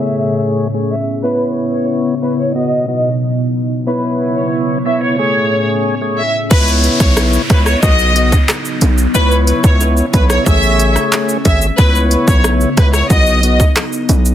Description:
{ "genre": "dancehall", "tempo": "91 BPM", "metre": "4/4", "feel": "straight", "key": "C# minor", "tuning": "A4 = 440 Hz", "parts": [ { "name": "rich studio violin section", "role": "melody", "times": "0.0-13.6 s", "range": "B4 to E5", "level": "-18 LUFS", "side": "equal", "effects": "tape echo" }, { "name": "tonewheel organ", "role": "accompaniment", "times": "0.0-13.6 s", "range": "A3 to D#5", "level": "-17 LUFS", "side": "left 2 dB", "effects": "slow rotary speaker" }, { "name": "glassy FM pad", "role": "sustained chords", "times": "0.0-14.3 s", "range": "A2 to G#4", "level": "-20 LUFS", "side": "equal", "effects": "ensemble chorus, built-in reverb, sidechain pumping" }, { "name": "hard-hitting 808-style bass", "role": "bass", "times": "6.5-14.3 s", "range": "G#1 to C#2", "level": "-13 LUFS", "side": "equal", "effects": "none" }, { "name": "island pop drum kit", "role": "drums", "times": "6.5-14.3 s", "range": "crash cymbal, handclaps, hi-hat, kick drum, rim click, shaker", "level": "-13 LUFS", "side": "equal", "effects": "overdrive" }, { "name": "downlifter", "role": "sound effects", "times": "6.5-11.8 s", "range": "none", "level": "-23 LUFS", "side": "left 1 dB", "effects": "none" }, { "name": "bongos", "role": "percussion", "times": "7.2-14.2 s", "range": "none", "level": "-25 LUFS", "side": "right 4 dB", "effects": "none" } ], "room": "light reverb", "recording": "dense, heavily limited modern master, low-pass filter", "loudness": "-11 LUFS", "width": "side -11 dB against mid", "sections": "0.0-6.5 A section; 6.5-14.3 B section", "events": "filter sweep 0.0-6.5", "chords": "0.0 Amaj7; 1.2 C#m7; 2.6 B; 3.9 C#m7; 5.2 Amaj7; 6.5 C#m7; 7.8 B; 9.1 C#m7; 10.5 Amaj7; 11.8 C#m7; 13.1 B" }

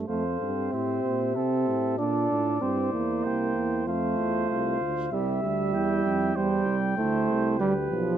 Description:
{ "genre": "classical, brass quintet", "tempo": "96 BPM", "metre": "4/4", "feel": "rubato", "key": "F major", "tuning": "A4 = 438 Hz", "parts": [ { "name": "clear trombone", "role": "accompaniment", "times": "0.0-8.2 s", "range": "F3 to D4", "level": "-27 LUFS", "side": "right 3 dB", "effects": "none" }, { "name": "warm tuba", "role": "bass", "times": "0.0-8.2 s", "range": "B1 to C3", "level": "-32 LUFS", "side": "right 4 dB", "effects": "none" }, { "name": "mellow trumpet", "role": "melody", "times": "0.1-7.9 s", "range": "D5 to G5", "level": "-34 LUFS", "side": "left 8 dB", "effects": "none" }, { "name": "clear flugelhorn", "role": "second line", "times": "0.1-8.2 s", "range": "A4 to E5", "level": "-33 LUFS", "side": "right 8 dB", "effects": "none" }, { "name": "mellow French horn", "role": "accompaniment", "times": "0.1-8.2 s", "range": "E4 to A4", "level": "-32 LUFS", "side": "left 5 dB", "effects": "none" } ], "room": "light reverb", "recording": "close, detailed microphones", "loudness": "-24 LUFS", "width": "side -10 dB against mid", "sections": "0.1-8.2 A section", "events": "none", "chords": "0.1 F; 2.6 C7; 3.9 F; 5.1 C; 7.6 G7" }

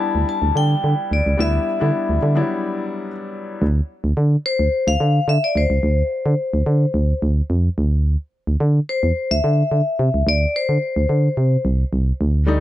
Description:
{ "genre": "disco", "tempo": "108 BPM", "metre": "4/4", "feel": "straight", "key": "D dorian", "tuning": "A4 = 441 Hz", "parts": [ { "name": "vibraphone with hard mallets", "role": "melody", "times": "0.0-11.6 s", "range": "C5 to A5", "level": "-21 LUFS", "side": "left 3 dB", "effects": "none" }, { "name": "warm concert grand piano", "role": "accompaniment", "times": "0.0-3.6, 12.5-12.6 s", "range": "F#3 to E4", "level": "-24 LUFS", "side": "left 3 dB", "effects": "none" }, { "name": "solid FM bass", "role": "bass", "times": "0.1-12.6 s", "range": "C2 to D3", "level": "-17 LUFS", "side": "right 1 dB", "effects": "none" } ], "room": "studio ambience", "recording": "dark, warm production", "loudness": "-16 LUFS", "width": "side -14 dB against mid", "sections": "0.0-3.6 A section; 3.6-12.6 A section", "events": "break 2.5-3.6", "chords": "0.0 Em7/D; 3.6 D7(no3); 7.8 C/D" }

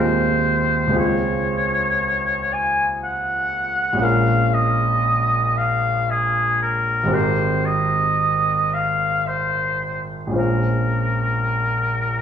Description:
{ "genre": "classical, impressionist duo for oboe and grand piano", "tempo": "57 BPM", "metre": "3/4", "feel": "uneven beats, rubato", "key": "unclear", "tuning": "A4 = 437 Hz", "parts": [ { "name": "warm oboe", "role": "melody", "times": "0.0-12.2 s", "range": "Ab4 to Ab5", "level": "-20 LUFS", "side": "left 1 dB", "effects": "none" }, { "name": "clear concert grand piano", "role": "accompaniment", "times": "0.0-12.2 s", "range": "Ab1 to C5", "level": "-21 LUFS", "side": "right 1 dB", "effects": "none" } ], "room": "wet recital hall reverb, RT60 1.6 s", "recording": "vinyl crackle, studio reverb", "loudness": "-18 LUFS", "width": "side -8 dB against mid", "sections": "0.0-12.2 A section", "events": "none", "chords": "0.0 Fm7/Eb; 1.0 Dbmaj7; 4.0 Bbm7; 7.1 Abmaj9; 10.4 Bbm9" }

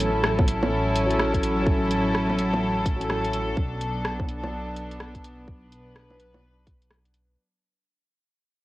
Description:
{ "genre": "future garage", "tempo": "126 BPM", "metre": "4/4", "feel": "swing 62% on 16ths", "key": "B minor", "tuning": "A4 = 440 Hz", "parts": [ { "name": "bright tine electric piano", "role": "accompaniment", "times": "0.0-3.6 s", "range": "F#3 to A4", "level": "-28 LUFS", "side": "equal", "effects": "medium stereo tremolo, vintage 12-bit sampler grit, sidechain pumping, analog delay" }, { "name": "warm studio string section", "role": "sustained chords", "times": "0.0-7.4 s", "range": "F#3 to B4", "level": "-27 LUFS", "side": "equal", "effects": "vintage 12-bit sampler grit, sidechain pumping" }, { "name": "dark detuned saw bass", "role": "bass", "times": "0.0-7.4 s", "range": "A1 to B1", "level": "-30 LUFS", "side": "equal", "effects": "none" }, { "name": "garage drum kit", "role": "drums", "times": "0.0-7.3 s", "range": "bongos, hi-hat, rim click", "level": "-28 LUFS", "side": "equal", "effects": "cassette tape" }, { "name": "electronic kick drum", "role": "drums", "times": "0.4-6.8 s", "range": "none", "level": "-24 LUFS", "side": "equal", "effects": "cassette tape" } ], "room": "light reverb", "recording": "home recording on cassette, vinyl crackle", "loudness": "-22 LUFS", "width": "side -17 dB against mid", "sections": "0.0-7.4 A section", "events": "fade-out 0.0-7.4", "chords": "0.0 A6; 3.6 Bm7" }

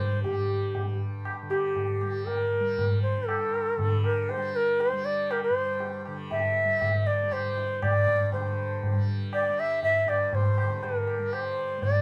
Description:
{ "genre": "indian classical, Hindustani", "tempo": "119 BPM", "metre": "4/4", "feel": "straight", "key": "G raga bhimpalasi", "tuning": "A4 = 440 Hz", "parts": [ { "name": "bright bansuri", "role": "melody", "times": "0.0-12.0 s", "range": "G4 to E5", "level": "-29 LUFS", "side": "equal", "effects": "none" }, { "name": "tanpura", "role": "drone", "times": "0.0-12.0 s", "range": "G2 to G3", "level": "-40 LUFS", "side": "equal", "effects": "none" }, { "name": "tabla", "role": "percussion", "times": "0.2-12.0 s", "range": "none", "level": "-32 LUFS", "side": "equal", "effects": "none" } ], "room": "moderate studio reverb, RT60 0.7 s", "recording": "band playing live in one room", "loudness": "-27 LUFS", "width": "mono", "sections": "0.0-8.3 A section; 8.3-12.0 B section", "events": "none", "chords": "none" }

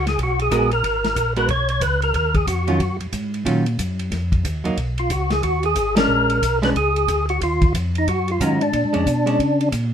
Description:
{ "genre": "soul jazz organ trio", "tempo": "182 BPM", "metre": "4/4", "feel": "swing 62% on 8ths", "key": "Eb minor", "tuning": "A4 = 440 Hz", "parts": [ { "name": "percussive tonewheel organ", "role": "melody", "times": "0.0-3.0, 5.0-9.7 s", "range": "D4 to Db5", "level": "-20 LUFS", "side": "equal", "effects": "slow rotary speaker, overdrive, chorus vibrato" }, { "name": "mellow tonewheel organ", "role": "bass", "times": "0.0-9.9 s", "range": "Ab1 to C#3", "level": "-22 LUFS", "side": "equal", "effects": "chorus vibrato, slow rotary speaker" }, { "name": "warm soul drum kit", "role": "drums", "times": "0.1-9.8 s", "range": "hi-hat, kick drum, ride cymbal, snare drum", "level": "-26 LUFS", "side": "equal", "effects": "none" }, { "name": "archtop guitar, miked and amplified", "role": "accompaniment", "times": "0.5-9.4 s", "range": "Eb3 to Bb4", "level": "-22 LUFS", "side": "right 2 dB", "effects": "none" } ], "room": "moderate studio reverb, RT60 0.5 s", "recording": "minimal, uncompressed stereo recording", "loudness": "-17 LUFS", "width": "side -8 dB against mid", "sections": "0.0-9.9 A section", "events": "band accent 5.9", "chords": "0.0 Abm9; 2.1 Ebmadd9; 4.8 B; 6.1 Bb7#9; 7.4 Ebm9; 8.7 Bb7#9" }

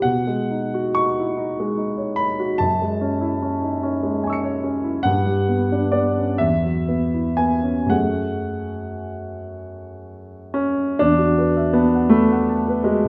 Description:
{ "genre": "classical, impressionist solo piano", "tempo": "36-55 BPM (dotted quarters)", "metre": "6/8", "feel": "rubato", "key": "F# dorian", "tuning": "A4 = 440 Hz", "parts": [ { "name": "warm grand piano", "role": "solo", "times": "0.0-13.1 s", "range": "E2 to C#7", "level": "-21 LUFS", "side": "equal", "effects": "none" } ], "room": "wet recital hall reverb, RT60 1.4 s", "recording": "none", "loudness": "-21 LUFS", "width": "mono", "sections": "0.0-11.0 A section; 11.0-13.1 B section", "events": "none", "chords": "0.0 B69; 2.6 F#m9; 5.1 Gmaj7#11; 6.4 Esus2; 7.9 F#madd9; 11.0 E9sus4" }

